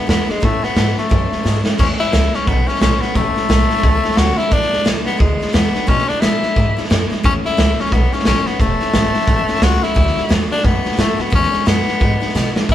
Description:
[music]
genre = rockabilly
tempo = 176 BPM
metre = 4/4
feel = swing 60% on 8ths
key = A major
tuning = A4 = 440 Hz
[part]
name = raspy tenor saxophone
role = melody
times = 0.0-12.7 s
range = G#3 to F#4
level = -19 LUFS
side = left 3 dB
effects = none
[part]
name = picked steel-string acoustic guitar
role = accompaniment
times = 0.0-12.7 s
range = E2 to F#4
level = -26 LUFS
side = left 3 dB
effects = none
[part]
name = upright bass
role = bass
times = 0.1-12.7 s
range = E1 to B2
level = -19 LUFS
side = right 1 dB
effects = none
[part]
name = raw garage drum kit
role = drums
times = 0.1-12.7 s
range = crash cymbal, hi-hat, kick drum, snare drum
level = -17 LUFS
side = right 1 dB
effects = none
[sound]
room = moderate stone room reverb, RT60 1.1 s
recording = band playing live in one room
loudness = -13 LUFS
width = side -12 dB against mid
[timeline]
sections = 0.0-1.8 A section; 1.8-12.7 B section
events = drum fill 1.4-1.8, 12.4-12.7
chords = 0.4 A; 4.5 E7; 7.2 A; 10.0 D; 11.3 E7

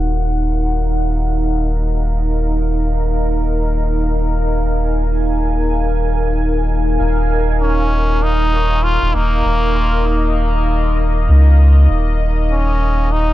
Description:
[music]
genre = ambient dub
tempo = free time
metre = none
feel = none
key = Eb minor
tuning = A4 = 438 Hz
[part]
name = deep dark ambient pad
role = sustained chords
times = 0.0-13.3 s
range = Eb4 to Ab5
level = -20 LUFS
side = equal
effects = chorus, built-in reverb
[part]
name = soft dub sub bass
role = bass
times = 0.0-13.3 s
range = Eb1 to Db2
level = -15 LUFS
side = equal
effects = tube saturation
[part]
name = trombone with metal mute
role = melody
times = 7.6-13.3 s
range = Bb3 to F4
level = -20 LUFS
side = left 1 dB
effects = dub echo
[sound]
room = small room ambience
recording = dark, warm production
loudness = -14 LUFS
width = side -15 dB against mid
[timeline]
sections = 0.0-7.0 A section; 7.0-13.3 B section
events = none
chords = 0.0 Ebm; 7.0 Eb5

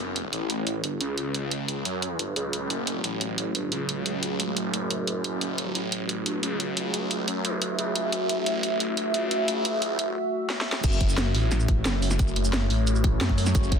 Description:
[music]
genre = dark technical drum and bass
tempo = 177 BPM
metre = 4/4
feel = straight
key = F# phrygian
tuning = A4 = 440 Hz
[part]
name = deep dark ambient pad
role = sustained chords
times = 2.2-13.8 s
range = A3 to E5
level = -30 LUFS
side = equal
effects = chorus, built-in reverb, sidechain pumping
[part]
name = phased detuned saw bass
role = bass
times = 0.0-13.8 s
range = F#1 to F#2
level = -27 LUFS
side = equal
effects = phaser, sidechain pumping, high-pass filter
[part]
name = drum and bass drum kit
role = drums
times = 0.2-13.8 s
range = crash cymbal, hi-hat, shaker, snare drum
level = -28 LUFS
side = right 1 dB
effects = none
[part]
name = electronic kick drum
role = drums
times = 10.8-13.8 s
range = none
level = -23 LUFS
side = equal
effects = none
[sound]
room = light reverb, digital ambience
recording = dense, heavily limited modern master, high-pass filter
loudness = -24 LUFS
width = side -7 dB against mid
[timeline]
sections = 0.0-10.8 A section; 10.8-13.8 B section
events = build-up 0.0-10.8; filter sweep on ambient pad 0.0-10.8; drum fill 10.5-10.8; drop 10.8-13.8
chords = 0.0 F#m

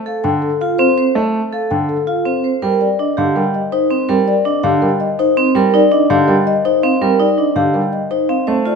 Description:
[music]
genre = classical, minimalist pattern music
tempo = 164 BPM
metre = 4/4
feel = straight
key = C dorian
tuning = A4 = 440 Hz
[part]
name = marimba with soft mallets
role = melody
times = 0.1-8.8 s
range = A4 to G5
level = -17 LUFS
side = left 8 dB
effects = none
[part]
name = vibraphone with hard mallets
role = arpeggios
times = 0.1-8.8 s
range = C4 to C5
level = -17 LUFS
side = right 7 dB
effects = none
[part]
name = clear baby grand piano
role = accompaniment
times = 0.2-8.7 s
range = D3 to A3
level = -18 LUFS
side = right 2 dB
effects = none
[sound]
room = moderate recital hall reverb, RT60 1.6 s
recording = minimal, uncompressed stereo recording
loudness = -13 LUFS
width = side -5 dB against mid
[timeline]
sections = 0.0-2.6 A section; 2.6-8.8 A section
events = none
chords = 0.0 F; 2.6 Cm9

